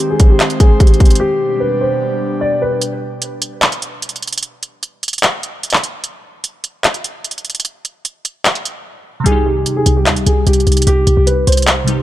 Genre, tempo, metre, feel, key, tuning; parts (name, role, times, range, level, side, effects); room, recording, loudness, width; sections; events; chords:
hip hop, trap; 149 BPM; 4/4; half-time; C harmonic minor; A4 = 440 Hz
dark concert grand piano; melody; 0.0-2.8, 9.3-12.0 s; G4 to D5; -17 LUFS; equal; low-pass filter, tape echo
airy breathy pad; sustained chords; 0.0-2.8 s; B2 to C5; -21 LUFS; equal; chorus, low-pass filter
trap drum kit; drums; 0.0-12.0 s; handclaps, hi-hat, kick drum; -13 LUFS; equal
glassy digital keys; accompaniment; 9.2-12.0 s; C3 to G4; -18 LUFS; equal; chorus, low-pass filter
short 808-style bass; bass; 9.3-12.0 s; C2 to Eb2; -14 LUFS; equal
light reverb; -12 LUFS; side -14 dB against mid
0.0-2.8 A section; 2.8-12.0 B section
break 1.2-2.8, 2.8-9.3
0.0 Ab; 1.2 G; 2.8 N.C.; 9.3 Cm